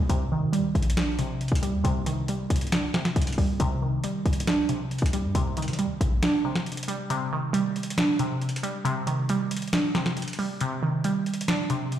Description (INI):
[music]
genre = hip hop, trap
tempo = 137 BPM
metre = 4/4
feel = half-time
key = C minor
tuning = A4 = 441 Hz
[part]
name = glassy wavetable pluck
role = accompaniment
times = 0.0-12.0 s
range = C3 to D4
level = -26 LUFS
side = right 1 dB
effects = chorus, low-pass filter
[part]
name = short 808-style bass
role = bass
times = 0.0-6.2 s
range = Bb1 to G3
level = -26 LUFS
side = left 1 dB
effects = none
[part]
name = booming analog drum machine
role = drums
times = 0.1-12.0 s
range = hi-hat, snare drum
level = -30 LUFS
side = equal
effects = none
[sound]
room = moderate lush hall reverb, RT60 1.7 s, digital ambience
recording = played on a big sound system in a bare room, large studio reverb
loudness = -24 LUFS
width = side -11 dB against mid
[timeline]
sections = 0.0-12.0 A section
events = filter sweep on synth pluck 0.0-7.1; kick muted 6.2-7.1, 7.1-12.0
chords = 0.0 Cmadd9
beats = | 0.10 0.53 0.97 1.41 | 1.85 2.29 2.72 3.16 | 3.60 4.04 4.47 4.91 | 5.35 5.79 6.23 6.66 | 7.10 7.54 7.98 8.42 | 8.85 9.29 9.73 10.17 | 10.61 11.04 11.48 11.92